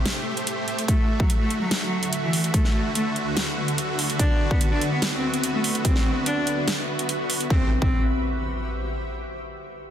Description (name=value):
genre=heavy wobble dubstep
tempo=145 BPM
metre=4/4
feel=half-time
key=A dorian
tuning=A4 = 440 Hz
part: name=supersaw chords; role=sustained chords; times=0.0-7.7 s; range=D3 to C5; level=-30 LUFS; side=right 1 dB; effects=vintage 12-bit sampler grit, sidechain pumping
part: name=granular cloud pad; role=texture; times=0.0-9.1 s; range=D3 to E5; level=-30 LUFS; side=equal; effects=built-in reverb, sidechain pumping
part: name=dubstep drum kit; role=drums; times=0.1-7.5 s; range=hi-hat, snare drum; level=-27 LUFS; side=right 1 dB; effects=none
part: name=clear cello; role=melody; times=0.9-8.0 s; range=E3 to D4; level=-27 LUFS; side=equal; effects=tape echo
part: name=electronic kick drum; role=drums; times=0.9-7.9 s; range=none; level=-21 LUFS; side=equal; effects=none
part: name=impact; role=sound effects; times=7.5-9.2 s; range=none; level=-29 LUFS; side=equal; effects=none
room=light reverb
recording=dense, heavily limited modern master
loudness=-21 LUFS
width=side -10 dB against mid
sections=0.0-7.5 A section; 7.5-9.2 B section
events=none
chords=0.0 Am7; 0.9 D; 7.5 Am7